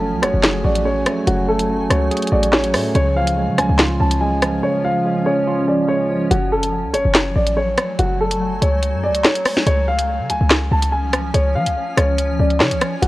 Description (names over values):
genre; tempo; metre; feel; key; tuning
hip hop, drill; 143 BPM; 4/4; half-time; F# harmonic minor; A4 = 441 Hz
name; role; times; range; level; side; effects
dark concert grand piano; melody; 0.0-13.1 s; F#4 to A5; -20 LUFS; equal; digital delay
barky tine electric piano; accompaniment; 0.0-6.3, 13.0-13.1 s; C#3 to G#4; -21 LUFS; right 2 dB; overdrive
granular cloud pad; sustained chords; 0.0-13.1 s; E#3 to G#5; -26 LUFS; equal; built-in reverb
short 808-style bass; bass; 0.0-13.1 s; F#1 to E#3; -20 LUFS; equal; none
drill drum kit; drums; 0.2-13.1 s; handclaps, hi-hat, rim click, snare drum; -17 LUFS; equal; none
room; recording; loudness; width
little or no reverb; worn, warbling old tape, cassette tape, warbly pitch drift; -15 LUFS; side -17 dB against mid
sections
0.0-6.3 A section; 6.3-13.1 B section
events
none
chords
0.0 F#madd9; 3.0 C#; 6.3 F#madd9; 9.7 C#